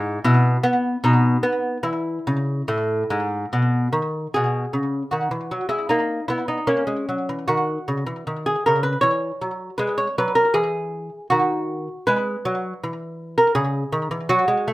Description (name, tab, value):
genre	classical, baroque-style dance for lute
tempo	71-82 BPM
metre	3/4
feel	rubato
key	E major, B major from 4.4 s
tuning	A4 = 438 Hz
part	lute	solo	0.0-14.7 s	G#2 to C#5	-19 LUFS	equal	slapback echo
room	light reverb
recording	rough home demo mix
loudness	-19 LUFS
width	side -18 dB against mid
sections	0.0-4.4 A section; 4.4-14.7 A section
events	none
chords	0.3 E5/B; 1.0 B; 1.9 E; 4.4 B; 6.7 F#5; 8.3 Bmaj13; 9.0 E; 11.3 B/D#; 12.8 N.C.; 13.6 C#m